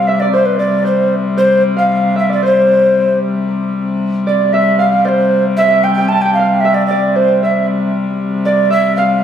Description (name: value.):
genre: medieval dance.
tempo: 115 BPM.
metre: 2/4.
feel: straight.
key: C major.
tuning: A4 = 441 Hz.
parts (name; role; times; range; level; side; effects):
mellow hollow tenor recorder; melody; 0.0-9.2 s; B4 to A5; -13 LUFS; right 1 dB; none.
Celtic harp; second line; 0.0-9.2 s; C5 to A5; -18 LUFS; right 3 dB; none.
dark hurdy-gurdy; drone; 0.0-9.2 s; C3 to G3; -16 LUFS; left 3 dB; none.
room: wet large studio reverb, RT60 1.4 s.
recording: band playing live in one room.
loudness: -11 LUFS.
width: side -9 dB against mid.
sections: 0.0-3.5 A section; 3.5-9.2 B section.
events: none.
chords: none.